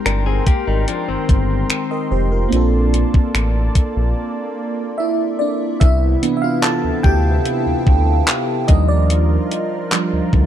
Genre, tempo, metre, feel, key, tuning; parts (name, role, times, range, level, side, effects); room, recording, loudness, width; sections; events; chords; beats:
contemporary R&B; 73 BPM; 4/4; straight; C major; A4 = 440 Hz
FM electric piano with soft pad layer; accompaniment; 0.0-10.5 s; E3 to A5; -20 LUFS; right 2 dB; chorus, phaser
warm analog pad; sustained chords; 0.0-10.5 s; C3 to C6; -25 LUFS; right 1 dB; chorus
direct-recorded clean electric guitar; arpeggios; 0.1-2.3 s; Eb3 to Bb4; -24 LUFS; left 10 dB; digital delay
smooth synth bass; bass; 0.1-10.5 s; F1 to Eb2; -17 LUFS; equal
crisp 8-bit digital drum machine; drums; 0.1-10.5 s; finger snaps, handclaps, hi-hat, kick drum; -15 LUFS; equal
little or no reverb; dark, warm production; -15 LUFS; side -10 dB against mid
0.0-5.8 A section; 5.8-10.5 B section
break 4.2-5.8; FM electric piano solo 5.8-10.5
0.0 Abmaj9; 2.5 Bbmaj9; 5.8 Cmaj9; 8.7 Ebmaj9
0.06 0.88 1.70 | 2.52 3.35 4.17 4.99 | 5.81 6.63 7.46 8.28 | 9.10 9.92